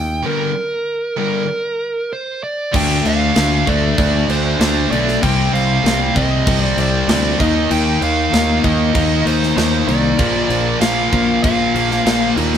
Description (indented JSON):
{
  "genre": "hard rock",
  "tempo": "96 BPM",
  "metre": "4/4",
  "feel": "straight",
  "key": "unclear",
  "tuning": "A4 = 441 Hz",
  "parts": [
    { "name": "dark smooth lead guitar", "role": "melody", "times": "0.0-12.3 s", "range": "Bb4 to G5", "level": "-20 LUFS", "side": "right 2 dB", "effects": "overdrive" },
    { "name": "modern bright picked electric bass", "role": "bass", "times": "0.0-12.6 s", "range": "Bb1 to Eb2", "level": "-20 LUFS", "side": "equal", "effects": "none" },
    { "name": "heavy high-gain guitar", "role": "riff", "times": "0.2-12.6 s", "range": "G2 to Eb4", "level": "-22 LUFS", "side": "right 8 dB", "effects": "distortion" },
    { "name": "overdriven semi-hollow guitar", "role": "riff", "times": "0.2-12.6 s", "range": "G2 to Eb4", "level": "-20 LUFS", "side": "left 8 dB", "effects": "none" },
    { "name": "tight distorted guitar", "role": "riff", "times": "2.7-12.6 s", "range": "Bb2 to Eb4", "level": "-25 LUFS", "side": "equal", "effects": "distortion" },
    { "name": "tight metal drum kit", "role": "drums", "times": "2.7-12.6 s", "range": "crash cymbal, kick drum, snare drum", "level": "-20 LUFS", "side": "equal", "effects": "none" }
  ],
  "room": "moderate stone room reverb, RT60 1.2 s",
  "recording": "band playing live in one room",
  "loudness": "-14 LUFS",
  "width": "side -8 dB against mid",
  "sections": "0.0-2.7 A section; 2.7-12.6 B section",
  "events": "none",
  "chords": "0.0 Gm; 2.7 Dm; 5.2 Cm; 7.4 Eb5; 10.2 Bb"
}